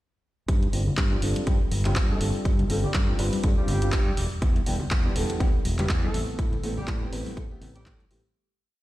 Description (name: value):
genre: filtered disco house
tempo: 122 BPM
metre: 4/4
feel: swing 56% on 16ths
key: G mixolydian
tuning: A4 = 439 Hz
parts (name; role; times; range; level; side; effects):
- modern bright fingered electric bass; bass; 0.5-8.2 s; E1 to A2; -28 LUFS; equal; sidechain pumping, low-pass filter
- electronic kick drum; drums; 0.5-8.0 s; none; -24 LUFS; equal; overdrive
- punchy analog drum machine; drums; 0.5-8.2 s; handclaps, hi-hat; -34 LUFS; equal; sidechain pumping on hats
- tambourine and congas; percussion; 0.5-8.3 s; none; -35 LUFS; left 2 dB; sidechain pumping on perc, low-pass filter on perc
- dark concert grand piano; accompaniment; 0.7-8.2 s; G3 to B4; -32 LUFS; equal; phaser, sidechain pumping, low-pass filter
- mellow horn section; melody; 2.1-8.0 s; G3 to A4; -37 LUFS; right 2 dB; sidechain pumping, low-pass filter, digital delay
room: studio ambience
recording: played on a big sound system in a bare room, stone room reverb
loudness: -22 LUFS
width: side -16 dB against mid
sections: 0.5-8.4 groove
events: filter sweep 0.5-8.4; fade-out 5.7-8.4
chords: 0.5 G7sus4; 4.2 Em7; 6.1 Am9